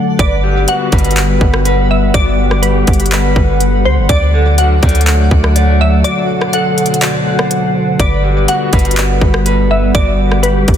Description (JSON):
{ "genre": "hip hop, atmospheric cloud-rap", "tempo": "123 BPM", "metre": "4/4", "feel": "half-time", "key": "G major", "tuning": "A4 = 438 Hz", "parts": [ { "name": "dark analog pad", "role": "sustained chords", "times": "0.0-10.8 s", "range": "B2 to F#5", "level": "-16 LUFS", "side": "left 1 dB", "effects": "chorus, sidechain pumping" }, { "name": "twinkling granular texture", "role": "texture", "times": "0.0-10.8 s", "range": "G3 to F#5", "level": "-24 LUFS", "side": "equal", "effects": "built-in reverb" }, { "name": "glassy wavetable pluck", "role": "melody", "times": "0.2-10.8 s", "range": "B4 to F#5", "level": "-19 LUFS", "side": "equal", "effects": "chorus, tape echo" }, { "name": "electric guitar at the edge of break-up", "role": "arpeggios", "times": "0.2-10.8 s", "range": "F#4 to D5", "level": "-19 LUFS", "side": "left 2 dB", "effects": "tremolo, tape echo" }, { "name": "soft 808-style bass", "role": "bass", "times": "0.2-10.8 s", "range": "G1 to D2", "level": "-13 LUFS", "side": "equal", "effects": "none" }, { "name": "trap drum kit", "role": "drums", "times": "0.2-10.8 s", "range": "handclaps, hi-hat, kick drum, rim click", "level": "-15 LUFS", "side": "equal", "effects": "none" } ], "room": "digital ambience", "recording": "dense, heavily limited modern master", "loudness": "-10 LUFS", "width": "side -9 dB against mid", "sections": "0.2-10.8 A section", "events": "break 0.0, 6.0-8.0", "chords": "0.2 Gmaj7; 4.1 D; 8.0 Gmaj7" }